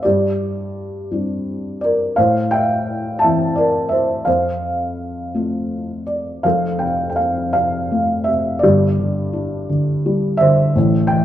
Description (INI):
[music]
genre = classical, lyrical solo piano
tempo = 56 BPM (dotted quarters)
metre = 6/8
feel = rubato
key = F major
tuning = A4 = 440 Hz
[part]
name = felt-muted upright piano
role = solo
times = 0.0-11.2 s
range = F1 to A5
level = -16 LUFS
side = equal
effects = none
[sound]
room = wet spring reverb, RT60 1.4 s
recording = heard from further back in the room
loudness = -16 LUFS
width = side -12 dB against mid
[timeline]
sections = 0.0-6.4 A section; 6.4-11.2 A section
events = none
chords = 0.0 Csus2/G; 2.2 Am; 4.3 F; 8.6 Csus2/G